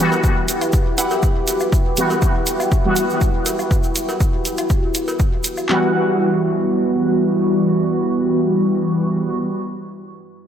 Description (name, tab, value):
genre	dub techno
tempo	121 BPM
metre	4/4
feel	straight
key	E minor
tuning	A4 = 440 Hz
part	deep dark ambient pad	sustained chords	0.0-9.4 s	G3 to B4	-23 LUFS	equal	chorus, built-in reverb, sidechain pumping
part	resonant sweep polysynth	stabs	0.0-9.4 s	E3 to F#4	-18 LUFS	equal	chorus, phaser, sidechain pumping, dub echo
part	cowbell and woodblock	percussion	0.1-5.7 s	none	-32 LUFS	left 2 dB	overdrive, sidechain pumping on perc, dub echo
part	egg shaker	percussion	0.1-5.7 s	none	-28 LUFS	right 2 dB	none
part	punchy analog drum machine	drums	0.2-5.8 s	handclaps, kick drum, snare drum	-18 LUFS	equal	none
part	electronic hi-hat	drums	0.5-5.5 s	none	-25 LUFS	right 1 dB	none
part	filtered dub chord stab	riff	1.0-1.2 s	E4 to F#5	-28 LUFS	right 2 dB	phaser, sidechain pumping, dub echo
room	wet lush hall reverb, RT60 1.8 s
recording	dreamy mix soaked in reverb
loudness	-16 LUFS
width	side -9 dB against mid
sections	0.0-5.7 A section; 5.7-9.7 B section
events	filter sweep on analog polysynth 0.0-5.7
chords	0.0 Emadd9